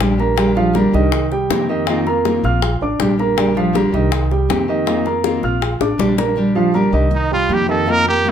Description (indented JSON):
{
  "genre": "latin, Cuban son and guajira",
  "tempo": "160 BPM",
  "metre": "4/4",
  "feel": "straight",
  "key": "Bb major",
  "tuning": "A4 = 440 Hz",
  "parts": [
    { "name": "nylon-string guitar", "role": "accompaniment", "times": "0.0-8.3 s", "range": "C3 to G4", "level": "-18 LUFS", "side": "equal", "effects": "none" },
    { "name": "dark baby grand piano", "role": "arpeggios", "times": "0.0-8.3 s", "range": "Eb3 to F6", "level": "-19 LUFS", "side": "right 3 dB", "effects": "none" },
    { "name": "upright bass", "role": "bass", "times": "0.0-8.3 s", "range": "A1 to F2", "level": "-21 LUFS", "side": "equal", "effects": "none" },
    { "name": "bongos", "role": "percussion", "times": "0.0-6.3 s", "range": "none", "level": "-23 LUFS", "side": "left 8 dB", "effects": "none" },
    { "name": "bright trumpet", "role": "melody", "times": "7.1-8.3 s", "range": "Eb4 to Bb4", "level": "-16 LUFS", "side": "right 2 dB", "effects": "none" }
  ],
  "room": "moderate studio reverb, RT60 0.5 s",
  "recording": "none",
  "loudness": "-14 LUFS",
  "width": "side -9 dB against mid",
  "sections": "0.0-6.4 A section; 6.4-8.3 B section",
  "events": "drum fill 5.8-6.4; trumpet solo 6.4-8.3",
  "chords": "0.0 Bb6; 1.1 Cm7; 1.9 F7sus4; 2.6 Bb6; 4.1 Cm7; 4.9 F7sus4; 5.6 Bb6; 7.1 Cm7",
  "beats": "0.00 | 0.38 0.75 1.13 1.50 | 1.88 2.25 2.62 3.00 | 3.38 3.75 4.12 4.50 | 4.87 5.25 5.62 6.00 | 6.37 6.75 7.12 7.50 | 7.87 8.25"
}